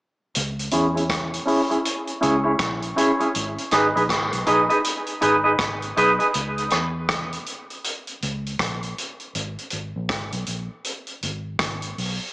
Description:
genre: dub reggae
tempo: 80 BPM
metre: 4/4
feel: swing 62% on 16ths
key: C# dorian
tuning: A4 = 440 Hz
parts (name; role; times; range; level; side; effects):
- vintage drum kit; drums; 0.3-12.2 s; hi-hat, kick drum, rim click; -26 LUFS; equal; none
- vintage muted fingered electric bass; bass; 0.4-12.2 s; G#1 to E2; -30 LUFS; equal; none
- clean electric guitar; accompaniment; 0.7-6.3 s; C#4 to D#5; -20 LUFS; equal; high-pass filter, low-pass filter, tape echo
room: wet spring reverb, RT60 2.5 s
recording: small speaker sound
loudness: -20 LUFS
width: side -20 dB against mid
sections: 0.3-12.3 A section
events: break 6.3-12.3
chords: 0.3 C#m; 3.3 G#m; 6.3 C#m; 9.3 N.C.

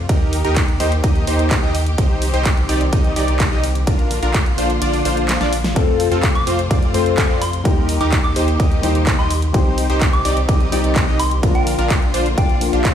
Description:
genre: EDM, festival progressive house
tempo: 127 BPM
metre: 4/4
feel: straight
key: Bb major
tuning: A4 = 440 Hz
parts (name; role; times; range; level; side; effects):
- rich symphonic string section; sustained chords; 0.0-12.9 s; C3 to G4; -26 LUFS; equal; vintage 12-bit sampler grit, sidechain pumping
- saturated sub bass; bass; 0.0-12.9 s; Bb1 to F2; -21 LUFS; equal; sidechain pumping
- supersaw stab; riff; 0.1-12.9 s; C4 to Eb5; -22 LUFS; equal; sidechain pumping, ping-pong delay
- big-room dance drum kit; drums; 0.1-12.9 s; handclaps, hi-hat, ride cymbal, snare drum; -25 LUFS; right 1 dB; none
- electronic kick drum; drums; 0.1-12.9 s; none; -17 LUFS; equal; none
- felt-muted upright piano; accompaniment; 5.7-12.9 s; F3 to A4; -24 LUFS; left 7 dB; sidechain pumping, ping-pong delay
- soft synth bell; melody; 6.4-12.8 s; G5 to D6; -26 LUFS; equal; chorus, phaser, ping-pong delay
room: light reverb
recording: played on a big sound system in a bare room, large studio reverb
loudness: -14 LUFS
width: side -9 dB against mid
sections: 0.0-12.9 A section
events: kick drops out 4.8-5.8; drum fill 5.3-5.8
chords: 0.1 Eb; 2.0 Cm; 3.9 Bb; 5.8 F; 7.7 Eb; 9.5 Cm; 11.4 Bb

